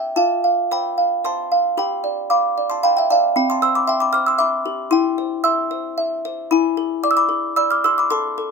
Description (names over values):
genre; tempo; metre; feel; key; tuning
classical, lullaby for music box; 114 BPM; 3/4; rubato; C major; A4 = 440 Hz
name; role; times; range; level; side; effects
music box; solo; 0.0-8.5 s; C4 to F6; -16 LUFS; equal; none
room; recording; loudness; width
moderate small room reverb, RT60 0.5 s; minimal, uncompressed stereo recording; -16 LUFS; side -4 dB against mid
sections
0.2-8.5 A section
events
none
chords
0.2 F; 1.8 G7; 3.4 C; 4.9 C/E; 6.5 E7